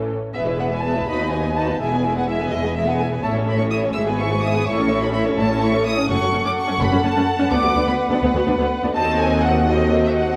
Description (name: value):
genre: quick classical-period movement for string orchestra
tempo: 84 BPM (dotted quarters)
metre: 6/8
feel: straight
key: E major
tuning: A4 = 444 Hz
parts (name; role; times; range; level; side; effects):
- rich chamber violin section; second line; 0.0-10.4 s; C#4 to G#5; -26 LUFS; equal; none
- rich chamber viola section; accompaniment; 0.0-10.4 s; E3 to G#4; -25 LUFS; equal; none
- bright chamber cello section; bass; 0.0-10.4 s; D2 to A2; -27 LUFS; equal; none
- warm chamber double bass section; bass; 0.0-10.4 s; E1 to D#2; -28 LUFS; equal; none
- rich studio violin section; melody; 0.3-10.4 s; D#5 to E6; -26 LUFS; equal; none
room: wet scoring stage reverb, RT60 1.8 s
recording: none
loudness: -20 LUFS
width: mono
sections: 0.3-10.4 A section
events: none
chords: 0.3 E; 1.1 B/D#; 1.8 E; 3.2 A; 4.0 E/G#; 4.7 A; 6.1 F#m; 7.5 Bm/D; 9.0 D#dim7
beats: | 0.35 1.08 | 1.80 2.52 | 3.24 3.96 | 4.67 5.38 | 6.10 6.81 | 7.52 8.23 | 8.95 9.68